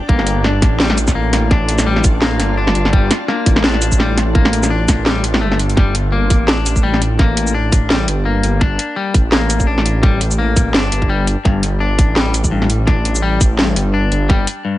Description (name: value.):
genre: half-time drum and bass.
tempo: 169 BPM.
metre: 4/4.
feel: swing 56% on 16ths, half-time.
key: G minor.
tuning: A4 = 440 Hz.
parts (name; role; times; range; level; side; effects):
backwards swelling texture; texture; 0.0-5.8 s; D4 to D5; -26 LUFS; equal; built-in reverb.
clean electric guitar; arpeggios; 0.1-14.8 s; G2 to D4; -20 LUFS; left 4 dB; dub echo.
dark detuned saw bass; bass; 0.1-14.5 s; G1 to A1; -17 LUFS; equal; none.
electronic kick drum; drums; 0.1-14.4 s; none; -13 LUFS; equal; none.
drum and bass drum kit; drums; 0.2-14.6 s; hi-hat, shaker, snare drum; -17 LUFS; equal; none.
room: little or no reverb.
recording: nothing above 10.6 kHz.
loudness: -12 LUFS.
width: side -15 dB against mid.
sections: 0.0-5.8 A section; 5.8-14.8 A section.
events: drop 0.0-5.8, 5.8-14.8; kick drops out 5.1-5.8.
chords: 0.0 Gm.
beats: | 0.09 0.45 0.80 1.16 | 1.51 1.87 2.22 2.58 | 2.93 3.29 3.64 4.00 | 4.35 4.71 5.06 5.42 | 5.77 6.13 6.48 6.84 | 7.19 7.55 7.90 8.26 | 8.61 8.97 9.32 9.68 | 10.03 10.39 10.74 11.10 | 11.45 11.81 12.16 12.52 | 12.87 13.23 13.58 13.94 | 14.29 14.65.